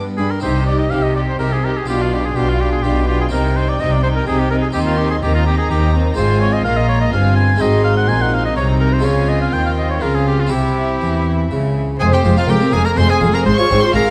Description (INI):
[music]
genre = classical, baroque-style concerto movement with solo episodes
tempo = 125 BPM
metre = 3/4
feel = straight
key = C minor, F minor from 6.2 s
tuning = A4 = 440 Hz
[part]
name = harpsichord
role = accompaniment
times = 0.0-14.1 s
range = F2 to F5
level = -26 LUFS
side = equal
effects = none
[part]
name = rich studio viola section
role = accompaniment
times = 0.0-14.1 s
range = Ab3 to Ab4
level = -26 LUFS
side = equal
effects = none
[part]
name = clear oboe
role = melody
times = 0.2-14.1 s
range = F4 to Ab5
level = -23 LUFS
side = equal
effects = none
[part]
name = warm studio violin section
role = melody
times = 0.2-14.0 s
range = C5 to Db6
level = -30 LUFS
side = equal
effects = none
[part]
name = warm chamber cello section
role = bass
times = 0.2-14.0 s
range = F2 to E3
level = -24 LUFS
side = equal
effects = none
[part]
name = rich chamber violin section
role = second line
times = 0.4-14.1 s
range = Eb4 to F5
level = -26 LUFS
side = equal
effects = none
[part]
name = rich chamber double bass section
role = bass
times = 0.4-14.0 s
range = F1 to E2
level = -20 LUFS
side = equal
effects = none
[sound]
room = moderate recital hall reverb, RT60 1.4 s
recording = vinyl crackle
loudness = -16 LUFS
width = mono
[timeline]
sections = 0.4-12.0 A section; 12.0-14.1 B section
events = none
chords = 0.4 Cm; 1.9 G7/B; 3.3 Cm; 4.8 Cm/Eb; 6.2 Fm/Ab; 7.6 Ab7; 9.0 Db; 10.5 C; 12.0 Fm; 13.5 Fm/Ab